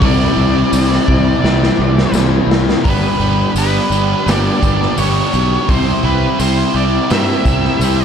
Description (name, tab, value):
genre	rock, shoegaze and dream pop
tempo	85 BPM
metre	4/4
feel	straight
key	unclear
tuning	A4 = 442 Hz
part	octave-fuzz lead guitar	melody	0.0-8.0 s	B4 to E5	-21 LUFS	equal	distortion, tape echo
part	overdriven electric guitar	riff	0.0-8.0 s	G2 to E4	-18 LUFS	left 12 dB	analog chorus
part	overdriven electric guitar	riff	0.0-8.0 s	G2 to G4	-18 LUFS	right 12 dB	reverse reverb
part	fuzz fingered electric bass	bass	0.0-8.0 s	G1 to G2	-16 LUFS	equal	overdrive
part	raw garage drum kit	drums	0.0-8.0 s	hi-hat, kick drum, snare drum	-19 LUFS	equal	none
part	tambourine	percussion	0.7-8.0 s	none	-32 LUFS	left 8 dB	none
room	studio ambience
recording	dark, warm production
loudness	-11 LUFS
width	side -7 dB against mid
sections	0.0-2.9 A section; 2.9-8.0 B section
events	drum fill 1.4-2.9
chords	0.0 Cadd9; 2.9 G; 5.7 C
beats	| 0.02 0.73 1.44 2.14 | 2.85 3.56 4.27 4.98 | 5.69 6.40 7.11 7.82